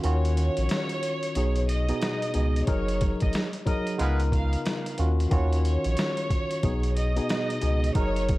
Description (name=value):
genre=hip hop, boom-bap hip-hop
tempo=91 BPM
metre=4/4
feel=swing 63% on 16ths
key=unclear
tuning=A4 = 438 Hz
part: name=warm studio violin section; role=melody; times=0.0-8.4 s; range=C#5 to E#5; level=-32 LUFS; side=equal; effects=high-pass filter, low-pass filter, analog delay
part: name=tine electric piano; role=accompaniment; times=0.0-8.4 s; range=B2 to A#4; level=-30 LUFS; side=equal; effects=slow stereo tremolo, cassette tape, high-pass filter, low-pass filter
part: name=soft dub sub bass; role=bass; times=0.0-8.4 s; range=F#1 to D#2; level=-25 LUFS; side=equal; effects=transformer saturation
part: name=boom bap sampler-style drum kit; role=drums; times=0.0-8.4 s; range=hi-hat, kick drum, snare drum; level=-29 LUFS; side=equal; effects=none
part: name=clear horn section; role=stabs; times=4.0-4.2 s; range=G#3 to B4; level=-38 LUFS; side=right 1 dB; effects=high-pass filter, low-pass filter, analog delay
room=little or no reverb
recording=dry, gritty hardware recording, vinyl crackle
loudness=-23 LUFS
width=side -18 dB against mid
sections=0.0-8.4 A section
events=break 0.0-2.7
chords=0.0 D#m9; 1.4 B6; 2.7 F#69; 4.0 C#13; 5.0 D#m9; 6.6 B6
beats=| 0.04 0.70 1.36 2.02 | 2.68 3.34 4.00 4.65 | 5.31 5.97 6.63 7.29 | 7.95